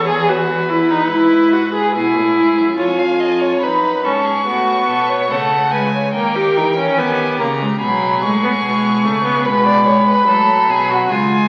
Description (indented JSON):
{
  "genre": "classical, baroque-style fugue for string quartet",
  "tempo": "72 BPM",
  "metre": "4/4",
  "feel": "straight",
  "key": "unclear",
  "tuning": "A4 = 443 Hz",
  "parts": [
    { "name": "clear violin", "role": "second line", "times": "0.0-11.5 s", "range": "E#4 to E#5", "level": "-22 LUFS", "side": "equal", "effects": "none" },
    { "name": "warm viola", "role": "accompaniment", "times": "0.0-11.5 s", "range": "F#3 to G#4", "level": "-18 LUFS", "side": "equal", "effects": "none" },
    { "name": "rich cello", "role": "bass", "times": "0.0-11.5 s", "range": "E2 to E3", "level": "-27 LUFS", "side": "equal", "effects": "none" },
    { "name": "clear violin", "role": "melody", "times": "2.8-11.5 s", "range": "F#5 to C#6", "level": "-20 LUFS", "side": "equal", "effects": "none" }
  ],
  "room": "wet recital hall reverb, RT60 1.4 s",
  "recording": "very old 78 rpm record, vinyl crackle",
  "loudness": "-15 LUFS",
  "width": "mono",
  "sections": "0.0-2.8 A section; 2.8-11.5 B section",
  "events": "none",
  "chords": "0.0 E; 1.1 E/G#; 2.8 C#7/E#; 4.5 F#m/A; 6.2 D#7; 7.8 G#m; 9.5 G#m7"
}